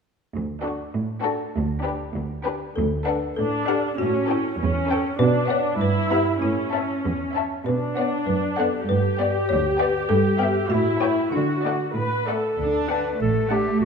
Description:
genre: cinematic, playful, whimsical film cue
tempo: 98 BPM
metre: 2/4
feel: straight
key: D major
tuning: A4 = 440 Hz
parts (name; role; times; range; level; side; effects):
- muted studio cello section; bass; 0.3-13.8 s; D2 to D4; -26 LUFS; right 3 dB; none
- muted studio violin section; melody; 0.6-13.7 s; A4 to B5; -31 LUFS; left 5 dB; none
- muted studio violin section; second line; 0.6-13.7 s; A3 to F#5; -30 LUFS; left 3 dB; none
- muted studio viola section; accompaniment; 0.6-13.7 s; C#4 to B4; -26 LUFS; right 1 dB; none
- folk marimba with medium hard mallets; melody; 2.8-12.2 s; D4 to D5; -26 LUFS; left 4 dB; none
- warm clarinet; second line; 12.6-13.8 s; F#4 to B4; -24 LUFS; left 4 dB; none
- muted studio double bass section; bass; 12.6-13.8 s; A1 to D2; -28 LUFS; right 6 dB; none
room: moderate scoring stage reverb, RT60 2.1 s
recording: minimal, uncompressed stereo recording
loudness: -21 LUFS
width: side -6 dB against mid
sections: 0.3-2.8 A section; 2.8-12.6 B section; 12.6-13.8 B section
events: none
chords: 0.3 D; 1.5 G/D; 2.8 D; 4.0 A7; 5.2 Bm; 5.8 Em/G; 6.4 A; 7.7 Bm; 8.9 G; 10.1 Em/G; 10.7 A7; 11.3 D

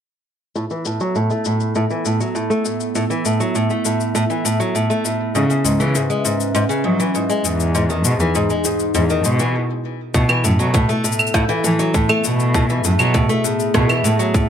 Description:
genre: folktronica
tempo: 100 BPM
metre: 4/4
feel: straight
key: B mixolydian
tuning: A4 = 439 Hz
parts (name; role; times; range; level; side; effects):
- warbly tape-like pad; sustained chords; 0.5-14.5 s; B3 to E5; -24 LUFS; right 1 dB; chorus, built-in reverb
- picked old ladder-braced acoustic guitar; arpeggios; 0.6-14.5 s; G#2 to A3; -19 LUFS; equal; low-pass filter, ping-pong delay
- electronic cabasa, claves and rim click; drums; 0.6-14.5 s; none; -23 LUFS; left 2 dB; overdrive, low-pass filter on perc, low-pass filter on snare, low-pass filter on room
- warm cello; bass; 5.4-14.2 s; C#2 to F#3; -19 LUFS; equal; none
- electronic kick drum; drums; 10.1-14.5 s; none; -20 LUFS; equal; overdrive
room: light reverb, digital ambience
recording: none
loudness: -16 LUFS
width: side -8 dB against mid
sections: 0.5-10.1 A section; 10.1-14.5 B section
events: filter sweep on steel-string acoustic guitar 0.5-10.1; stop 9.5-10.1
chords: 0.5 B7sus4; 5.3 C#m7; 7.7 Emaj7; 10.1 B7sus4

